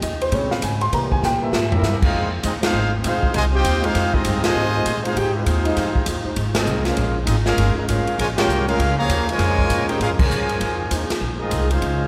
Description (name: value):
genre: jazz, big band swing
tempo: 198 BPM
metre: 4/4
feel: swing 63% on 8ths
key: F minor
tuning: A4 = 443 Hz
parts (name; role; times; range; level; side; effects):
- warm upright piano; accompaniment; 0.0-1.7 s; Db3 to C6; -27 LUFS; equal; none
- upright bass; bass; 0.0-12.1 s; G1 to C3; -25 LUFS; equal; none
- swinging big-band drum kit; drums; 0.0-11.9 s; crash cymbal, hi-hat, kick drum, ride cymbal, snare drum, toms; -26 LUFS; equal; none
- clear trumpet section; melody; 1.7-12.1 s; C4 to Bb5; -26 LUFS; equal; none
- clear trombone section; second line; 1.7-12.1 s; C3 to Ab4; -28 LUFS; equal; none
- mellow trombone section; sustained chords; 2.6-11.8 s; Ab3 to C5; -33 LUFS; equal; none
room: wet cathedral reverb, RT60 4.6 s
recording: recorded in a church or concert hall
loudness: -20 LUFS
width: mono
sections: 0.0-2.1 A section; 2.1-12.1 B section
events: upright piano solo 0.0-2.1; drum fill 1.2-1.8; band accent 2.6, 4.4, 6.5, 8.3, 10.2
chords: 0.3 Bbm7; 0.9 C7; 2.1 Fm7; 7.0 Bbm7; 10.6 Fm7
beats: 0.01 0.32 0.62 | 0.92 1.22 1.53 1.83 | 2.13 2.44 2.74 3.04 | 3.34 3.65 3.95 4.25 | 4.55 4.86 5.16 5.46 | 5.76 6.07 6.37 6.67 | 6.97 7.28 7.58 7.88 | 8.18 8.49 8.79 9.09 | 9.39 9.70 10.00 10.30 | 10.60 10.91 11.21 11.51 | 11.81